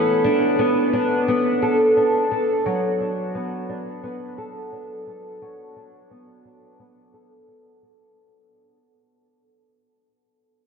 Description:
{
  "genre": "dream pop",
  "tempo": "87 BPM",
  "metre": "4/4",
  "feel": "straight",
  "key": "unclear",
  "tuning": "A4 = 439 Hz",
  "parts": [
    { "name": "picked twelve-string acoustic guitar", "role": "solo", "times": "0.0-8.7 s", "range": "E3 to A4", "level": "-19 LUFS", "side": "equal", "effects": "lush chorus, low-pass filter, ping-pong delay" }
  ],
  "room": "wet huge ambient reverb, RT60 8.7 s",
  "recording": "dreamy mix soaked in reverb",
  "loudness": "-18 LUFS",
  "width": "side -5 dB against mid",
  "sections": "0.0-8.2 A section",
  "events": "fade-out 0.0-8.2; filter sweep on twelve-string acoustic guitar 0.0-8.2",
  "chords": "0.0 Bm7"
}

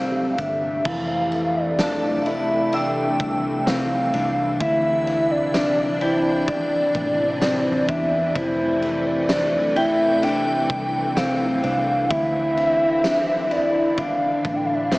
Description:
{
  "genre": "dream pop",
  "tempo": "64 BPM",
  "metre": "4/4",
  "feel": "straight",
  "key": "F major",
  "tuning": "A4 = 441 Hz",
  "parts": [
    { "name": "hollow clarinet-like synth lead", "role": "melody", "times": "0.0-15.0 s", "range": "C5 to G5", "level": "-22 LUFS", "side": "equal", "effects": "chorus, analog delay" },
    { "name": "soft string machine", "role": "sustained chords", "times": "0.0-15.0 s", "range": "C3 to D4", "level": "-27 LUFS", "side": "equal", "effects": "ensemble chorus" },
    { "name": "mellow electric guitar", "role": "arpeggios", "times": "0.0-15.0 s", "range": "E3 to E4", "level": "-24 LUFS", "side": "left 1 dB", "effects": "wide subtle chorus, analog delay" },
    { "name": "vintage muted fingered electric bass", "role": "bass", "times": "0.0-15.0 s", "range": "F1 to E2", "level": "-33 LUFS", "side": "equal", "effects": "none" },
    { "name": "oversized low-tuned drum kit", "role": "drums", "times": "0.4-15.0 s", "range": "crash cymbal, hi-hat, kick drum, ride cymbal, snare drum, tambourine", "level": "-30 LUFS", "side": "equal", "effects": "none" },
    { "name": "shimmering bell with halo", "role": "texture", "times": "1.8-12.5 s", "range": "E5 to E6", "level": "-33 LUFS", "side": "equal", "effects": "ensemble chorus, tremolo, analog delay" }
  ],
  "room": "wet huge ambient reverb, RT60 8.5 s",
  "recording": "dreamy mix soaked in reverb, small speaker sound",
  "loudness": "-19 LUFS",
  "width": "side -21 dB against mid",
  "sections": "0.9-15.0 A section",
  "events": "none",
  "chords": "0.0 Fadd9; 0.9 Fmaj7; 4.6 Dsus2; 8.4 Fmaj7; 12.1 Dsus2"
}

